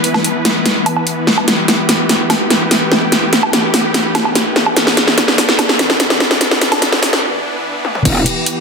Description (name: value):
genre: heavy wobble dubstep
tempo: 146 BPM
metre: 4/4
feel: half-time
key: E minor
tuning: A4 = 436 Hz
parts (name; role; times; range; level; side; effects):
- supersaw chords; sustained chords; 0.0-8.6 s; E3 to B4; -18 LUFS; equal; sidechain pumping, low-pass filter
- big-room dance drum kit; drums; 0.0-8.5 s; crash cymbal, hi-hat, snare drum, toms, woodblock; -12 LUFS; equal; none
- metallic wobble bass; bass; 8.1-8.2 s; E1; -14 LUFS; equal; chorus, overdrive
- electronic kick drum; drums; 8.1 s; none; -20 LUFS; equal; none
room: wet digital room reverb, RT60 1.2 s, digital ambience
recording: dense, heavily limited modern master, high-pass filter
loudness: -11 LUFS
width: side -4 dB against mid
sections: 0.0-8.1 A section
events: build-up 0.0-8.1; drum fill 0.0-7.2, 7.8; filter sweep on supersaw synth 0.0-8.1; break 7.2-8.1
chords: 0.0 Em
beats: 0.24 0.66 1.07 | 1.48 1.89 2.30 2.71 | 3.12 3.53 3.94 4.36 | 4.77 5.18 5.59 6.00 | 6.41 6.82 7.23 7.64 | 8.05 8.46